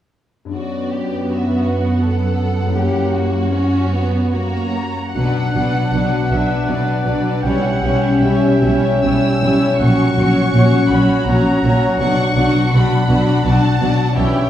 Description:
classical, slow romantic movement for symphony orchestra; 70-85 BPM; 3/4; rubato; B minor; A4 = 442 Hz
warm symphonic violin section; melody; 0.5-14.5 s; C#5 to E6; -26 LUFS; left 1 dB
concert harp; arpeggios; 0.5-14.5 s; F#2 to F#5; -20 LUFS; left 3 dB
warm symphonic cello section; bass; 0.5-14.2 s; F#2 to B2; -22 LUFS; right 1 dB
warm symphonic violin section; second line; 0.6-14.5 s; D4 to F#5; -24 LUFS; left 1 dB
warm symphonic viola section; accompaniment; 0.6-14.5 s; E3 to E4; -21 LUFS; right 2 dB
warm clarinet; second line; 5.1-14.5 s; C#4 to D4; -22 LUFS; left 1 dB
warm oboe; second line; 5.1-14.5 s; E5 to G5; -25 LUFS; right 1 dB
rich symphonic double bass section; bass; 5.2-14.2 s; A#1 to B1; -20 LUFS; right 1 dB
wet recital hall reverb, RT60 1.7 s; heard from further back in the room; -14 LUFS; side -11 dB against mid
0.5-5.2 A section; 5.2-14.5 B section
0.5 Bm/F#; 2.8 F#7b9; 5.2 Bm; 7.4 C#m7b5/B; 9.8 F#/A#; 12.0 Bm

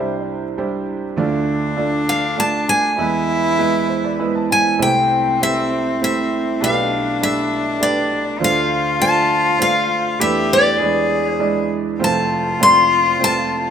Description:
acoustic folk-pop ballad; 100 BPM; 3/4; straight; A4 = 439 Hz
picked steel-string acoustic guitar; melody; 0.0-13.7 s; D5 to C6; -17 LUFS; left 2 dB
warm grand piano; accompaniment; 0.0-13.7 s; F1 to A5; -20 LUFS; right 4 dB
bright cello; second line; 1.2-13.7 s; C4 to G#4; -21 LUFS; left 3 dB
moderate plate reverb, RT60 3.0 s; rough home demo mix; -15 LUFS; side -8 dB against mid
0.0-4.8 A section; 4.8-13.7 B section
0.0 Cadd9; 1.2 Dm; 3.0 E; 4.8 C6; 6.6 Gadd9/B; 8.4 Dm7; 10.2 E7sus4; 10.8 E7; 12.0 F

